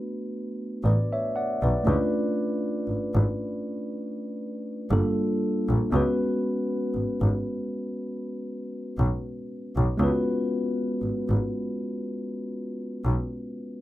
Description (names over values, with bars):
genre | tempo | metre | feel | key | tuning
contemporary R&B | 59 BPM | 4/4 | swing 54% on 16ths | unclear | A4 = 440 Hz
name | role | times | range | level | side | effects
mellow tine electric piano | accompaniment | 0.0-13.8 s | G3 to F#5 | -27 LUFS | equal | none
clear double bass | bass | 0.8-13.1 s | G1 to C#2 | -24 LUFS | equal | none
room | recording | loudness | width
light reverb | none | -25 LUFS | side -15 dB against mid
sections
0.0-13.8 A section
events
none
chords
0.0 Bm7; 1.9 C#7b9b13; 4.9 Gm9; 5.9 C#7sus4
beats
0.84 | 1.86 2.88 3.89 4.91 | 5.93 6.94 7.96 8.98 | 9.99 11.01 12.03 13.04